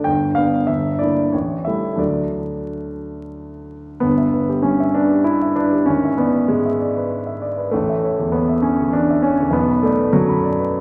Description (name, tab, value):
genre	classical, romantic character piece for solo piano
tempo	88-101 BPM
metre	3/4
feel	rubato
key	unclear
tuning	A4 = 440 Hz
part	warm grand piano	solo	0.0-10.8 s	G1 to B5	-19 LUFS	equal	none
room	wet scoring stage reverb, RT60 1.5 s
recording	vinyl crackle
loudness	-18 LUFS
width	mono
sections	0.0-4.0 A section; 4.0-10.8 B section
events	none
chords	0.1 G; 0.7 Em7b5/G; 1.3 A7; 2.0 D; 4.0 Em/G; 5.9 E7/G#; 7.7 A; 9.5 Bm